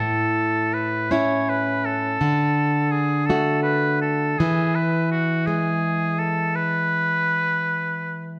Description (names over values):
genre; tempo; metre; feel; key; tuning
romantic duo for oboe and classical guitar; 56 BPM (dotted quarters); 12/8; rubato; unclear; A4 = 440 Hz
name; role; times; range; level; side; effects
clear oboe; melody; 0.0-8.3 s; F#4 to C#5; -26 LUFS; equal; none
nylon-string guitar; accompaniment; 0.0-8.4 s; A2 to F#4; -25 LUFS; equal; none
room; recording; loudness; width
moderate recital hall reverb, RT60 1.4 s; none; -22 LUFS; mono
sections
0.0-8.4 A section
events
none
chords
0.0 A; 2.2 D; 4.4 E